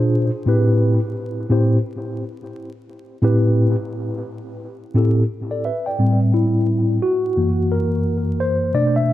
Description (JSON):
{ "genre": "hip hop", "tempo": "87 BPM", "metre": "4/4", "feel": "swing 61% on 16ths", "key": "A minor", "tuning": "A4 = 440 Hz", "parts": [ { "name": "mellow tine electric piano", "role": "solo", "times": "0.0-9.1 s", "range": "F#2 to G5", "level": "-17 LUFS", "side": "equal", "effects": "medium stereo tremolo, analog delay" } ], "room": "light reverb", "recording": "dark, warm production, vinyl crackle", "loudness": "-17 LUFS", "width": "side -14 dB against mid", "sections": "0.0-6.0 A section; 6.0-9.1 B section", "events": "tine electric piano solo 6.0-9.1", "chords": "0.5 Am7; 7.4 F#7", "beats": "| 0.47 1.17 1.85 2.54 | 3.23 3.92 4.61 5.30 | 5.99 6.68 7.37 8.06 | 8.75" }